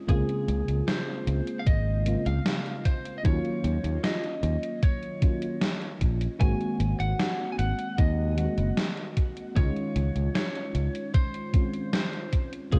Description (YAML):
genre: vaporwave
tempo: 76 BPM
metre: 4/4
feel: straight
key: unclear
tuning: A4 = 440 Hz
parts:
  - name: mellow FM electric piano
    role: accompaniment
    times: 0.0-12.8 s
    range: Db3 to Gb4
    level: -35 LUFS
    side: equal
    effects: ensemble chorus, cassette tape
  - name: lightly driven lead guitar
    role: melody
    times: 0.1-12.8 s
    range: Ab4 to Ab5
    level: -38 LUFS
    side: equal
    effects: tape echo
  - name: modern bright fingered electric bass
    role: bass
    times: 0.1-12.8 s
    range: Gb1 to Eb2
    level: -29 LUFS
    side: equal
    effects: none
  - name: electronic kick drum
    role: drums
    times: 0.1-12.8 s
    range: none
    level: -25 LUFS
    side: equal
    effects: vintage 12-bit sampler grit, studio reverb
  - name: gated 80s digital drum machine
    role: drums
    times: 0.1-12.8 s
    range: hi-hat, snare drum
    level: -34 LUFS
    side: equal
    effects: gated reverb, gated reverb snare, vintage 12-bit sampler grit, studio reverb
room: digital ambience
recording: cassette tape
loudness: -27 LUFS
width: mono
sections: 0.0-12.8 A section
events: none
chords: 0.1 Bbm11; 3.2 Ebm7; 6.4 Ab7; 9.6 Dbmaj9